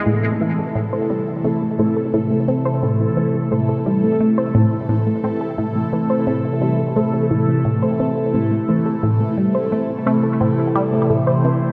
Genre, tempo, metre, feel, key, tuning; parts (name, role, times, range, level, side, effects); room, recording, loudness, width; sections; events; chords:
ambient, sequencer-driven space music; 87 BPM; 4/4; straight; A minor; A4 = 440 Hz
phased analog pad; sustained chords; 0.0-11.7 s; C3 to C5; -21 LUFS; equal; phaser, chorus, tremolo
soft round pluck; arpeggios; 0.1-11.6 s; A3 to C5; -26 LUFS; equal; chorus, vintage 12-bit sampler grit, delay
resonant blip pluck; riff; 0.1-11.7 s; A2 to C4; -24 LUFS; equal; phaser, delay
wet cathedral reverb, RT60 5.2 s; dreamy mix soaked in reverb; -19 LUFS; mono
0.1-11.7 A section
0.1 Am